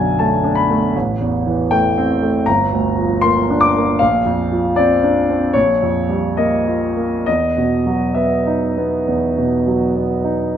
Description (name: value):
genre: classical, impressionist solo piano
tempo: 64-81 BPM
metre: 4/4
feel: rubato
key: unclear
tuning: A4 = 439 Hz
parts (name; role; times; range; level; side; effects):
- clear concert grand piano; solo; 0.0-10.6 s; G1 to D6; -14 LUFS; equal; none
room: moderate recital hall reverb, RT60 1.4 s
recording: close, detailed microphones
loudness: -14 LUFS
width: side -9 dB against mid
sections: 0.0-10.6 A section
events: none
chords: 0.0 Bm7; 0.9 Am7; 2.5 Gm7; 4.0 A#add9; 5.5 A#m6; 7.3 Esus2